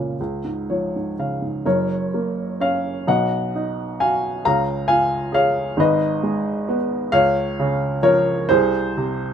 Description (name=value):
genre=classical, lyrical solo piano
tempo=41-45 BPM (dotted quarters)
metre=6/8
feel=rubato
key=F# major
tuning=A4 = 439 Hz
part: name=warm upright piano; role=solo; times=0.0-9.3 s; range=F#1 to A#5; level=-18 LUFS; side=equal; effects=none
room=light reverb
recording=close, detailed microphones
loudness=-18 LUFS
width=side -8 dB against mid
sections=0.0-1.7 A section; 1.7-9.3 B section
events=upright piano fill 0.2-1.7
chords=0.2 C#add9; 1.7 F#; 3.1 B; 4.4 C#; 5.8 G#m; 7.1 C#; 8.5 G#/B#